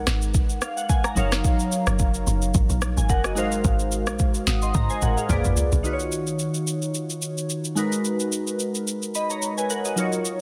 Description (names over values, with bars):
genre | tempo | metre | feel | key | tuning
amapiano | 109 BPM | 4/4 | swing 55% on 16ths | unclear | A4 = 440 Hz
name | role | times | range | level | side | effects
glassy digital keys | accompaniment | 0.0-10.4 s | Eb3 to Eb6 | -28 LUFS | equal | chorus
deep log drum bass | bass | 0.0-5.8 s | Gb1 to Ab2 | -27 LUFS | equal | none
afro-pop drum kit | drums | 0.1-10.4 s | kick drum, rim click, shaker, snare drum, toms | -27 LUFS | equal | soft clipping on snare
room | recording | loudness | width
little or no reverb | dense, heavily limited modern master | -24 LUFS | mono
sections
0.0-5.8 A section; 5.8-10.4 B section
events
drop 0.0-5.8; synth keys fill 0.3-1.4; drum fill 4.7-5.8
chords
0.0 Abm9; 1.2 Ebm7/Gb; 3.4 Ab13; 5.3 Bb7b9; 5.8 Ebm7; 7.8 Abm9